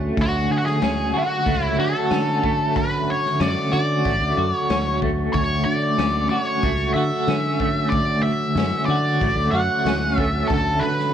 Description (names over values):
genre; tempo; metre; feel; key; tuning
psychedelic rock; 93 BPM; 4/4; straight; D major; A4 = 440 Hz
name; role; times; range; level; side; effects
percussive tonewheel organ; sustained chords; 0.0-11.1 s; F#3 to F#4; -32 LUFS; right 8 dB; slow rotary speaker, overdrive
clean electric guitar; riff; 0.0-11.1 s; D2 to F#4; -23 LUFS; equal; tremolo, double-tracked left and right
fingered electric bass; bass; 0.0-11.1 s; A1 to D3; -25 LUFS; equal; none
octave-fuzz lead guitar; melody; 0.2-11.1 s; F#4 to F#5; -23 LUFS; equal; wah, distortion, slapback echo
raw garage drum kit; drums; 0.2-11.1 s; hi-hat, kick drum, snare drum; -28 LUFS; left 3 dB; none
room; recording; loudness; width
light reverb, small room ambience; 1960s-style stereo; -18 LUFS; side -9 dB against mid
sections
0.0-11.1 A section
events
none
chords
0.0 Dmaj7